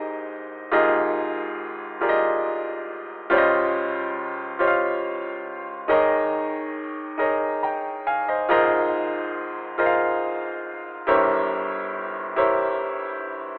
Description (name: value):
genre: gospel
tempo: 46 BPM (dotted quarters)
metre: 6/8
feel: straight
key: Ab major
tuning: A4 = 440 Hz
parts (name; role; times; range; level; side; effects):
- clear baby grand piano; solo; 0.0-13.6 s; G1 to Bb5; -24 LUFS; equal; none
room: light reverb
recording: rough home demo mix, telephone sound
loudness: -24 LUFS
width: mono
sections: 0.0-13.6 A section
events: none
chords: 0.0 Abmaj9; 0.7 Fm11/Ab; 3.3 Dbmaj9#11; 5.9 Eb7sus4; 8.5 Ab69; 11.1 C7b9/G